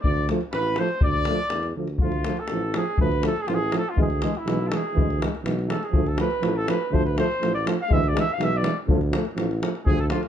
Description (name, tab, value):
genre	balkan folk, Balkan brass band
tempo	122 BPM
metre	2/4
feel	straight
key	D dorian sharp4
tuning	A4 = 441 Hz
part	clear trumpet	second line	0.0-1.7, 9.9-10.2 s	F4 to D5	-32 LUFS	right 1 dB	none
part	warm tuba	bass	0.0-10.1 s	A1 to E2	-27 LUFS	equal	none
part	davul	percussion	0.0-10.3 s	none	-26 LUFS	left 1 dB	none
part	warm flugelhorn	melody	0.1-10.2 s	E4 to F5	-27 LUFS	right 1 dB	none
part	warm euphonium	accompaniment	0.3-10.2 s	G#3 to A3	-31 LUFS	left 8 dB	none
part	warm trombone	accompaniment	0.3-10.2 s	E3 to F3	-29 LUFS	right 7 dB	none
room	light reverb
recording	dark, warm production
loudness	-21 LUFS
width	side -9 dB against mid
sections	0.0-2.0 A section; 2.0-9.9 B section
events	flugelhorn solo 2.0-9.9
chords	0.0 Dm; 4.0 E; 5.9 Dm; 7.9 E/D; 8.9 Dm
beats	| 0.04 0.53 | 1.02 1.52 | 2.01 2.50 | 3.00 3.49 | 3.98 4.47 | 4.96 5.46 | 5.95 6.44 | 6.93 7.42 | 7.91 8.39 | 8.88 9.37 | 9.86